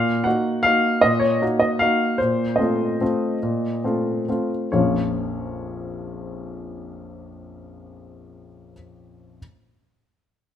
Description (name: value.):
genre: classical, piano waltz.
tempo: 127-163 BPM.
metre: 3/4.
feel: rubato.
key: Bb minor.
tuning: A4 = 440 Hz.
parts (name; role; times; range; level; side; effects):
clear upright piano; solo; 0.0-9.4 s; Bb1 to Gb5; -20 LUFS; left 1 dB; none.
room: moderate large studio reverb, RT60 1.3 s.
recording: none.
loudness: -19 LUFS.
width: side -9 dB against mid.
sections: 0.0-4.7 A section; 4.7-7.3 B section.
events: slowing down 1.6-4.7.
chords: 0.0 Ebm/Bb; 2.2 F7/Bb; 4.7 Bbm.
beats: 0.26 0.65 | 1.03 1.42 1.81 | 2.20 2.59 3.01 | 3.42 3.83 4.27 | 4.73 5.15 5.58 | 6.00 6.41 6.85.